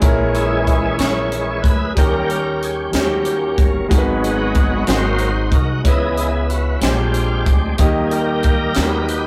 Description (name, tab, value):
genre	slow gospel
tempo	62 BPM (dotted quarters)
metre	6/8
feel	straight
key	unclear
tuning	A4 = 440 Hz
part	clear grand piano	accompaniment	0.0-9.3 s	G#2 to D#5	-23 LUFS	equal	none
part	bright tonewheel organ	sustained chords	0.0-9.3 s	E3 to D#5	-24 LUFS	equal	slow rotary speaker, overdrive, chorus vibrato
part	upright bass	bass	0.0-9.3 s	G1 to D#2	-25 LUFS	equal	none
part	crisp fusion drum kit	drums	0.0-9.2 s	hi-hat, kick drum, snare drum	-20 LUFS	equal	none
room	moderate small room reverb, RT60 0.6 s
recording	rough rehearsal-room recording, warm saturation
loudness	-17 LUFS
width	mono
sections	0.0-9.3 A section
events	tonewheel organ solo 0.0-9.3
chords	0.0 A#m7b5; 2.0 D#7; 3.9 G#m7; 4.9 G#7; 5.9 C#m7; 6.8 A#13; 7.8 D#